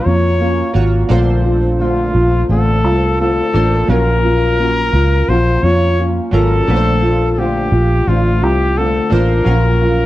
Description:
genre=indie pop, bedroom pop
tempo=86 BPM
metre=4/4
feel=straight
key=unclear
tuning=A4 = 440 Hz
part: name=clear trumpet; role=melody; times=0.0-10.1 s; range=F4 to Db5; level=-18 LUFS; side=left 2 dB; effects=wide subtle chorus, slapback echo
part: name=chorused retro synth keys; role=accompaniment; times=0.0-10.1 s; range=Gb3 to Db5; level=-25 LUFS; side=right 5 dB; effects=cassette tape
part: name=nylon-string guitar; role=accompaniment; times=0.0-10.1 s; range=Bb2 to F4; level=-17 LUFS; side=left 1 dB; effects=ensemble chorus, vibrato effect
part: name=vintage muted fingered electric bass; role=bass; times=0.1-10.1 s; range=Ab1 to F2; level=-14 LUFS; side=equal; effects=none
room=small room ambience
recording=dry, close 1970s-style studio recording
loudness=-11 LUFS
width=side -15 dB against mid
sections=0.0-10.1 A section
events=none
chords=0.0 Gbmaj7; 1.1 Bbmaj9; 3.9 Gbmaj7/Bb; 6.7 Bbmaj9; 9.5 Gbmaj7/Bb

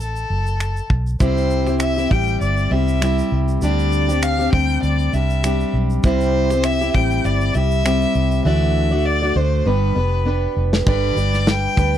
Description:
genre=acoustic pop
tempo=99 BPM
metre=4/4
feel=swing 55% on 16ths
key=C major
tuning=A4 = 441 Hz
part: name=rich violin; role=melody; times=0.0-12.0 s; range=A4 to G5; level=-23 LUFS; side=left 2 dB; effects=none
part: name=vintage muted fingered electric bass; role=bass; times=0.0-12.0 s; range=F1 to D2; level=-20 LUFS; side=equal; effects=none
part: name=modern studio drum kit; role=drums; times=0.0-12.0 s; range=crash cymbal, finger snaps, kick drum, shaker, snare drum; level=-21 LUFS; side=equal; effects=none
part: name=picked plugged-in steel-string acoustic guitar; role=accompaniment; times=1.2-12.0 s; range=G2 to D5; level=-20 LUFS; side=equal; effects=none
room=small room ambience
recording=dry, close 1970s-style studio recording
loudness=-16 LUFS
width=side -10 dB against mid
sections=0.0-10.9 A section; 10.9-12.0 B section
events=drum fill 8.5-10.9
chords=0.0 D (rootless); 1.2 C; 3.6 Gsus4/D; 6.0 C; 8.5 Dadd9; 9.7 G

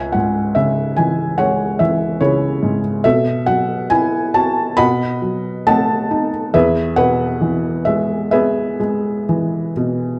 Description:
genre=classical, lyrical solo piano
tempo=61-73 BPM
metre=4/4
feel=rubato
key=E major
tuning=A4 = 439 Hz
part: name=felt-muted upright piano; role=solo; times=0.0-10.2 s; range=C#2 to B5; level=-17 LUFS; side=equal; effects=none
room=light reverb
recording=close, detailed microphones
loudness=-17 LUFS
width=mono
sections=0.0-10.2 A section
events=none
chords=0.0 C#m; 3.0 B7sus4; 4.8 B7; 6.5 E

